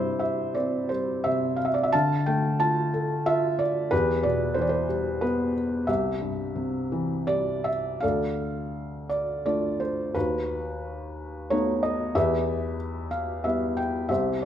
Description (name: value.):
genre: classical, lyrical solo piano.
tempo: 80-94 BPM.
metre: 3/4.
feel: rubato.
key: D dorian.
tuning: A4 = 435 Hz.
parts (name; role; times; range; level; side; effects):
felt-muted upright piano; solo; 0.0-14.5 s; C2 to A5; -24 LUFS; equal; none.
room: moderate recital hall reverb, RT60 1.8 s.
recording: none.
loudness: -24 LUFS.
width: side -10 dB against mid.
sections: 0.0-8.0 A section; 8.0-14.5 B section.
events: none.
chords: 0.0 C; 1.9 Dm; 3.9 Em; 5.9 C; 8.0 Dm; 10.2 B7/D#; 12.2 Em.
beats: 0.56 1.26 | 1.94 2.60 3.27 | 3.92 4.56 5.22 | 5.88 6.56 7.29 | 8.03 8.76 9.46 | 10.15 10.84 11.50 | 12.15 12.80 13.45 | 14.10.